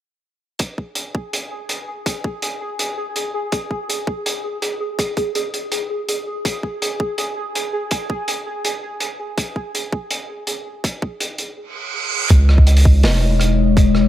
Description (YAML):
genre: half-time drum and bass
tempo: 164 BPM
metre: 4/4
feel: half-time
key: C# minor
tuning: A4 = 441 Hz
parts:
  - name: crunchy breakbeat drum kit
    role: drums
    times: 0.6-14.0 s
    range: hi-hat, rim click, snare drum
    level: -24 LUFS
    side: right 1 dB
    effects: none
  - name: electronic kick drum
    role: drums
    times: 0.6-13.8 s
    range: none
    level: -16 LUFS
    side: equal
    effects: high-pass filter on kick
  - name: pulsing gated texture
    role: texture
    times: 1.0-14.1 s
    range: G#4 to D#5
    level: -26 LUFS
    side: right 1 dB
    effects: chorus, built-in reverb
  - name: reverse cymbal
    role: sound effects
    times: 11.7-12.3 s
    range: none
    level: -22 LUFS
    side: right 6 dB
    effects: none
  - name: deep dark ambient pad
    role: sustained chords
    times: 13.0-14.1 s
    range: G#3 to C#5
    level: -18 LUFS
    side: left 6 dB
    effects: chorus, built-in reverb, sidechain pumping
  - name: long sustained 808-style bass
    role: bass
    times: 12.3-14.1 s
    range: E1 to C#2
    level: -13 LUFS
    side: equal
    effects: none
room: light reverb, small room ambience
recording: bright 1980s-style digital production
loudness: -18 LUFS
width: side -13 dB against mid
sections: 0.6-12.3 A section; 12.3-14.1 B section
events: reverse cymbal 11.7-12.3; drop 12.3-14.1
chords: 0.6 N.C.; 12.3 C#madd9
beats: | 0.60 0.96 1.33 1.69 | 2.06 2.43 2.79 3.16 | 3.52 3.89 4.25 4.62 | 4.99 5.35 5.72 6.08 | 6.45 6.82 7.18 7.55 | 7.91 8.28 8.65 9.01 | 9.38 9.74 10.11 10.47 | 10.84 11.21 11.57 11.94 | 12.30 12.67 13.04 13.40 | 13.77